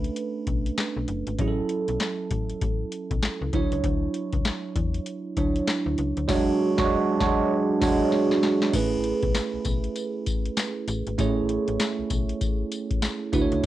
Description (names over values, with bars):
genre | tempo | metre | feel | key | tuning
R&B, new jack swing | 98 BPM | 4/4 | swing 62% on 16ths | A major | A4 = 440 Hz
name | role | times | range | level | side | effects
bell-like tine electric piano | accompaniment | 0.0-13.7 s | F#3 to C#5 | -25 LUFS | right 3 dB | phaser, cassette tape, plate reverb
slap-like FM bass | bass | 0.0-13.7 s | E1 to E2 | -30 LUFS | left 2 dB | none
booming analog drum machine | drums | 0.0-13.7 s | crash cymbal, handclaps, hi-hat, kick drum, snare drum, tambourine | -27 LUFS | left 2 dB | none
room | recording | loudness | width
wet studio reverb, RT60 0.6 s | home recording on cassette | -23 LUFS | side -14 dB against mid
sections
0.0-8.7 A section; 8.7-13.7 B section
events
band accent 6.3-8.7; drum fill 8.1-8.7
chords
0.0 Bm9; 1.4 A6; 3.5 Dmaj9; 6.3 E13; 8.7 Amaj9